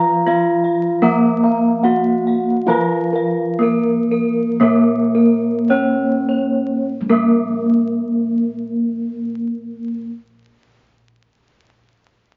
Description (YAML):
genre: Javanese gamelan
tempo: 48-84 BPM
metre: 4/4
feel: straight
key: unclear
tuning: A4 = 440 Hz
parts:
  - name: gamelan-type bronze metallophone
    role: melody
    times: 0.0-10.1 s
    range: Bb3 to Bb4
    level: -22 LUFS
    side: equal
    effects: none
  - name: gamelan-type bronze metallophone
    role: accompaniment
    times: 0.0-10.1 s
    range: F3-30c to Bb3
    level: -21 LUFS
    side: equal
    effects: none
  - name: gamelan-type bossed gongs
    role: arpeggios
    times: 0.0-10.1 s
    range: Bb4 to Bb5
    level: -25 LUFS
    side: equal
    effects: none
  - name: gamelan-type bronze metallophone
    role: arpeggios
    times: 0.0-10.1 s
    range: Bb4 to Bb5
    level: -29 LUFS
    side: equal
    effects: none
  - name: gamelan-type bossed gongs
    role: bass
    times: 0.0-10.0 s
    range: Bb1 to F4-30c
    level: -32 LUFS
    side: equal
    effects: none
room: moderate studio reverb, RT60 0.9 s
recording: very old 78 rpm record, vinyl crackle, nothing above 7.5 kHz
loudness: -17 LUFS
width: mono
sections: 0.0-6.9 A section; 6.9-11.9 B section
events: slowing down 0.0-6.9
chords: none